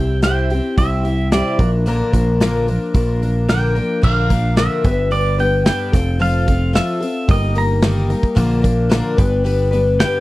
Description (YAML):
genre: folk rock and heartland rock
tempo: 111 BPM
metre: 4/4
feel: straight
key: unclear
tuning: A4 = 440 Hz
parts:
  - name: pedal steel guitar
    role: melody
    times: 0.0-10.2 s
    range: D5 to Bb5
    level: -23 LUFS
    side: right 2 dB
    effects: none
  - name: picked twelve-string acoustic guitar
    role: accompaniment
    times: 0.0-10.2 s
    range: G2 to B4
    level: -19 LUFS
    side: left 2 dB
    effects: none
  - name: picked electric bass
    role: bass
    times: 0.0-10.0 s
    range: F1 to C2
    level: -18 LUFS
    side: equal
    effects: none
  - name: natural country drum kit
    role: drums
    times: 0.2-10.1 s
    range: crash cymbal, hi-hat, kick drum, snare drum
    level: -17 LUFS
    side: equal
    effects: none
room: little or no reverb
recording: dry, close 1970s-style studio recording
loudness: -14 LUFS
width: side -18 dB against mid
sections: 0.0-4.0 A section; 4.0-10.2 B section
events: none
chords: 0.0 C; 1.6 Bb; 4.8 G; 5.9 F; 7.3 Eb/G; 8.4 Bb; 9.2 G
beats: 0.23 0.78 1.32 | 1.86 2.41 2.95 3.49 | 4.04 4.58 5.12 5.66 | 6.21 6.75 7.29 7.83 | 8.38 8.92 9.46 10.00